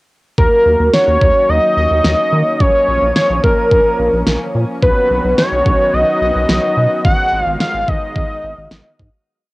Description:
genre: synth-pop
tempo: 108 BPM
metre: 4/4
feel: straight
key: Eb minor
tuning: A4 = 442 Hz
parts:
  - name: fat analog lead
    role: melody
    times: 0.4-9.0 s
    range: Bb4 to Gb5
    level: -13 LUFS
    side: equal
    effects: shimmer reverb
  - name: lush unison pad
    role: sustained chords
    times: 0.4-9.2 s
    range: Eb3 to Gb4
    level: -23 LUFS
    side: equal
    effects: chorus, cassette tape, shimmer reverb
  - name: rubbery square bass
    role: bass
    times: 0.4-9.1 s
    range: Ab1 to Eb3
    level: -18 LUFS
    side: equal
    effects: none
  - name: pop drum kit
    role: drums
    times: 0.4-9.1 s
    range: kick drum, snare drum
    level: -16 LUFS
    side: equal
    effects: cassette tape
room: moderate small room reverb, RT60 0.6 s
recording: home recording on cassette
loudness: -11 LUFS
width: side -21 dB against mid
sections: 0.4-9.3 verse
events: fade-out 7.0-9.3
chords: 0.4 Ebm7; 2.6 Bbm; 4.8 Badd9; 7.0 Abm7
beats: | 0.38 0.94 1.49 2.05 | 2.60 3.16 3.71 4.27 | 4.83 5.38 5.94 6.49 | 7.05 7.60 8.16 8.71

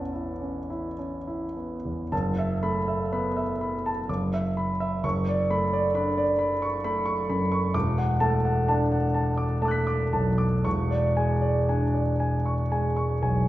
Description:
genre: classical, impressionist solo piano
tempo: 50-67 BPM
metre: 3/4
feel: rubato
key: unclear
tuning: A4 = 440 Hz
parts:
  - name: warm grand piano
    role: solo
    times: 0.0-13.5 s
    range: E1 to B6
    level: -23 LUFS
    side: equal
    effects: none
room: wet recital hall reverb, RT60 1.2 s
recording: recorded in a church or concert hall, nothing above 7.7 kHz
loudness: -23 LUFS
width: side -15 dB against mid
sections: 0.0-2.1 A section; 2.1-13.5 A section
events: none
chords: 0.0 Aadd9; 2.1 F#m7; 4.1 D69/F#; 5.0 Bm9/F#; 7.7 E11; 10.7 E6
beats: 0.98 | 2.11 3.12 4.08 | 5.03 5.94 6.83 | 7.74 8.68 9.63 | 10.65 11.70 12.72

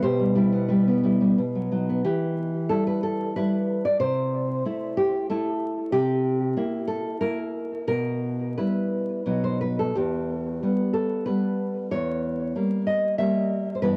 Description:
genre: romantic piece for solo classical guitar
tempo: 87-96 BPM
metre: 3/4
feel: rubato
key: E minor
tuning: A4 = 440 Hz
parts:
  - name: nylon-string guitar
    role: solo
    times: 0.0-14.0 s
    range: E2 to E5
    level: -25 LUFS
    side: equal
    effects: cassette tape, analog delay
room: moderate spring reverb, RT60 2.3 s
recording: home recording on cassette, vinyl crackle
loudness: -25 LUFS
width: mono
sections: 0.0-2.0 A section; 2.0-14.0 B section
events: none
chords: 0.0 Em/B; 1.4 B; 2.0 Em; 4.0 Am/C; 5.9 C7; 7.9 Em/B; 9.3 B; 9.9 Em; 11.9 Edim7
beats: | 0.02 0.70 1.37 | 2.03 2.69 3.35 | 4.00 4.65 5.30 | 5.93 6.56 7.21 | 7.89 8.57 9.26 | 9.94 10.61 11.26 | 11.90 12.54 13.18 | 13.81

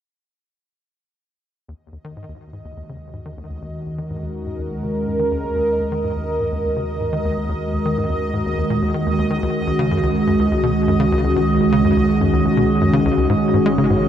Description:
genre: ambient, sequencer-driven space music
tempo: 124 BPM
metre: 4/4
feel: straight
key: Eb minor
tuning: A4 = 442 Hz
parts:
  - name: sweeping resonant pad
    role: sustained chords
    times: 1.7-14.1 s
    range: Eb3 to Bb4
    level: -18 LUFS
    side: right 1 dB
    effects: chorus
  - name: tight sequencer bass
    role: riff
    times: 1.7-14.0 s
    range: Db2 to Ab3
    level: -24 LUFS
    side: left 1 dB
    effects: wide subtle chorus, analog delay
  - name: warm sub bass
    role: bass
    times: 1.7-14.1 s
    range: Ab1 to Eb2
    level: -29 LUFS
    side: left 1 dB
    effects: none
  - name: bubbling stepped-filter texture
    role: texture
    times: 2.2-14.1 s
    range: Eb5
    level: -29 LUFS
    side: right 2 dB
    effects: chorus, built-in reverb
room: wet huge ambient reverb, RT60 7.8 s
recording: none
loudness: -16 LUFS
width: side -9 dB against mid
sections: 1.7-14.1 A section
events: fade-in on analog synth bass 1.7-14.1; fade-in on sub bass 1.7-14.1; fade-in on synth texture 1.7-14.1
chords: 1.7 Ebm; 9.4 Dbsus2; 13.3 Ab5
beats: | 1.68 2.17 2.65 3.14 | 3.62 4.10 4.59 5.07 | 5.55 6.04 6.52 7.01 | 7.49 7.97 8.46 8.94 | 9.43 9.91 10.39 10.88 | 11.36 11.85 12.33 12.81 | 13.30 13.78

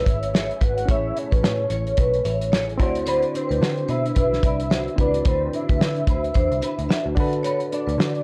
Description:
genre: indie pop, bedroom pop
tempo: 110 BPM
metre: 4/4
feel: swing 60% on 16ths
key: unclear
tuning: A4 = 440 Hz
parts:
  - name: soft octave-layered synth lead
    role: melody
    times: 0.0-8.2 s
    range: C5 to F#5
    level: -32 LUFS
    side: equal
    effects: ensemble chorus
  - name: vibraphone with medium hard mallets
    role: second line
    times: 0.0-8.1 s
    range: B4 to F#5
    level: -29 LUFS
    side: equal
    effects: analog chorus, tape echo
  - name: nylon-string guitar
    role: accompaniment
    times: 0.0-8.2 s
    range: D3 to C#5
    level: -32 LUFS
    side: equal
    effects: ensemble chorus, warbly pitch drift
  - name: reed electric piano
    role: accompaniment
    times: 0.0-8.2 s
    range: C4 to C#5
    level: -32 LUFS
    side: equal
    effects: cassette tape
  - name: vintage muted picked electric bass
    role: bass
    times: 0.1-8.2 s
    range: G#1 to D3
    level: -30 LUFS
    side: equal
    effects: none
  - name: cloth-damped thuddy drum kit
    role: drums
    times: 0.1-8.2 s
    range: hi-hat, kick drum, snare drum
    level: -24 LUFS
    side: equal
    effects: none
room: light reverb, studio ambience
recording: dry, gritty hardware recording, cassette tape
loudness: -22 LUFS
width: mono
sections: 0.0-8.2 A section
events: none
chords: 0.0 Amaj9; 2.8 D13; 7.2 Gmaj9 (rootless)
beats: 0.34 | 0.89 1.43 1.98 2.52 | 3.07 3.62 4.16 4.71 | 5.26 5.80 6.35 6.90 | 7.44 7.99

